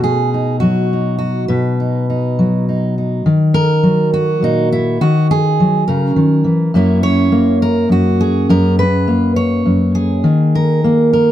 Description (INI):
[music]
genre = folk, solo fingerstyle acoustic guitar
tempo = 68 BPM (dotted quarters)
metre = 6/8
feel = straight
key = unclear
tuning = A4 = 440 Hz
[part]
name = fingerpicked steel-string acoustic guitar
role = solo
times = 0.0-11.3 s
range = F#2 to C#5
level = -12 LUFS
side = equal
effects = none
[sound]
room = light reverb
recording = close, detailed microphones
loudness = -12 LUFS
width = side -12 dB against mid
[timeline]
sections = 0.0-3.3 A section; 3.3-11.3 B section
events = none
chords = 0.0 B; 3.3 D#m; 6.7 F#7; 10.2 D#5